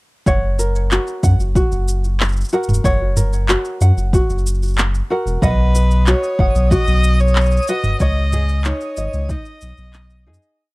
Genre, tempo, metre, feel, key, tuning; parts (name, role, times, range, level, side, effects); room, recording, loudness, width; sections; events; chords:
folktronica; 93 BPM; 4/4; straight; F# major; A4 = 440 Hz
tenor ukulele; arpeggios; 0.3-10.7 s; D#4 to F#5; -22 LUFS; equal; tape echo
warm sub bass; bass; 0.3-10.4 s; E1 to F#2; -16 LUFS; equal
electronic kick drum; drums; 0.3-9.4 s; -18 LUFS; equal
organic electronic drum kit; drums; 0.3-10.6 s; cabasa, handclaps, toms; -22 LUFS; equal
warm violin; melody; 5.4-10.3 s; B4 to D#5; -22 LUFS; equal
twinkling granular texture; texture; 6.0-10.6 s; D#6; -32 LUFS; left 1 dB; built-in reverb
little or no reverb; dry, close 1970s-style studio recording; -14 LUFS; side -22 dB against mid
0.3-10.6 groove
fade-out 7.1-10.6
0.3 F#; 5.4 B; 8.0 C#sus2